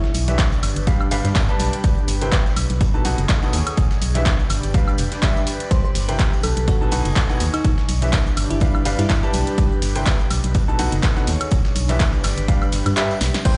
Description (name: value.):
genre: piano house.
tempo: 124 BPM.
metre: 4/4.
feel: swing 56% on 16ths.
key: unclear.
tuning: A4 = 440 Hz.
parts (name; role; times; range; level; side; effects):
bell-like FM electric piano; melody; 0.0-0.3, 5.7-9.3, 13.5 s; D#4 to C5; -32 LUFS; equal; chorus, tape echo.
dusty soul sampler-style drum kit; drums; 0.0-13.6 s; ride cymbal, snare drum; -38 LUFS; equal; none.
punchy analog drum machine; drums; 0.0-13.6 s; crash cymbal, handclaps, hi-hat, ride cymbal, shaker, snare drum, woodblock; -29 LUFS; equal; none.
airy breathy pad; texture; 0.0-13.5 s; D4 to B4; -33 LUFS; equal; chorus, phaser, sidechain pumping.
organ-like FM bass; bass; 0.1-13.5 s; E1 to G2; -25 LUFS; equal; sidechain pumping.
tambourine; percussion; 0.1-13.4 s; none; -39 LUFS; equal; none.
bright upright piano; riff; 0.3-13.6 s; B2 to A5; -29 LUFS; equal; sidechain pumping, tape echo.
electronic kick drum; drums; 0.4-13.6 s; none; -22 LUFS; equal; none.
room: light reverb.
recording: played on a big sound system in a bare room, large studio reverb, nothing above 10.3 kHz.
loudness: -19 LUFS.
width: mono.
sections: 0.0-13.5 A section.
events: drop 0.0-13.5; kick drops out 13.0-13.5; drum fill 13.2.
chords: 0.0 Em7; 0.6 G7; 1.8 Cmaj7; 2.6 B7; 3.8 Em7; 4.5 G7; 5.7 Cmaj7; 6.4 B7; 7.6 Em7; 8.4 G7; 9.6 Cmaj7; 10.3 B7; 11.5 Em7; 12.2 G7.